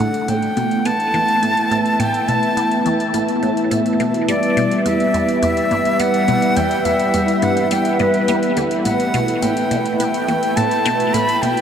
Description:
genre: ambient, sequencer-driven space music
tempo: 105 BPM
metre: 4/4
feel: straight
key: unclear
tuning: A4 = 438 Hz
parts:
  - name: breathy bright concert flute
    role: melody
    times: 0.0-11.6 s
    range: B4 to B5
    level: -19 LUFS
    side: equal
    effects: shimmer reverb, tape echo
  - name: sweeping resonant pad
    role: sustained chords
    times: 0.0-11.6 s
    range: G3 to E5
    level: -18 LUFS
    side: equal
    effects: chorus, shimmer reverb
  - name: resonant blip pluck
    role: riff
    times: 0.0-11.6 s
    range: E2 to B3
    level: -24 LUFS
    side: equal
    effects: phaser, wide subtle chorus, shimmer reverb, tape echo
  - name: electronic hi-hat and congas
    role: percussion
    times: 0.0-11.6 s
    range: none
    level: -27 LUFS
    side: left 1 dB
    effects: tape echo
room: wet huge ambient reverb, RT60 7.2 s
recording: dreamy mix soaked in reverb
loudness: -15 LUFS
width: side -8 dB against mid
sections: 0.0-11.6 A section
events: none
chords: 0.0 Asus2; 4.3 Em; 8.9 Asus2

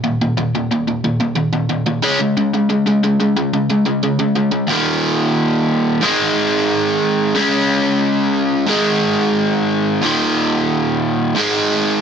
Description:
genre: punk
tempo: 180 BPM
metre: 4/4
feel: straight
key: unclear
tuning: A4 = 440 Hz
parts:
  - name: overdriven electric guitar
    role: solo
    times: 0.0-12.0 s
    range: Eb2 to Db4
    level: -14 LUFS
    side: equal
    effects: none
room: light reverb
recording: none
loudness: -14 LUFS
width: side -7 dB against mid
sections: 0.0-4.7 A section; 4.7-12.0 B section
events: none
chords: 0.0 Eb5; 2.0 Db5; 4.7 Eb5; 6.0 Ab5; 7.4 Db5; 8.7 Ab5; 10.0 Eb5; 11.4 Ab5

